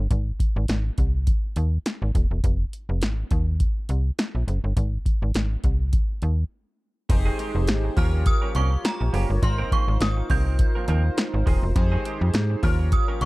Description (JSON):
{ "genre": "early-eighties boogie funk", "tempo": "103 BPM", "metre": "4/4", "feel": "swing 56% on 16ths", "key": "Ab major", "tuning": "A4 = 445 Hz", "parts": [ { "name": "slap-like FM bass", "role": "bass", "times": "0.0-13.3 s", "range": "Eb1 to Ab2", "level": "-22 LUFS", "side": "equal", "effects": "none" }, { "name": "electro analog drum machine", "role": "drums", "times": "0.1-13.3 s", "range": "crash cymbal, hi-hat, kick drum, snare drum", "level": "-24 LUFS", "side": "equal", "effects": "none" }, { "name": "chorused polysynth", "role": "accompaniment", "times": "7.1-13.3 s", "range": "Eb4 to Db5", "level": "-31 LUFS", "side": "equal", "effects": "none" }, { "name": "semi-hollow electric guitar", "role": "riff", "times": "7.1-13.3 s", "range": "Eb3 to Bb4", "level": "-34 LUFS", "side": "right 6 dB", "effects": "wide subtle chorus" }, { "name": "synth chime", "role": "melody", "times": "8.0-13.3 s", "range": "Bb5 to G6", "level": "-30 LUFS", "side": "right 2 dB", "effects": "ensemble chorus, phaser, tape echo" } ], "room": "little or no reverb", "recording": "dark, warm production", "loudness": "-21 LUFS", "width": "side -21 dB against mid", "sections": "0.0-7.1 A section; 7.1-13.3 B section", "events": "break 6.5-7.1", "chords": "0.1 Ab; 2.4 Fm; 3.3 N.C.; 4.8 Ab; 7.1 Fm9; 8.0 Eb9; 9.4 Ab69; 11.8 Fm9; 12.6 Eb9" }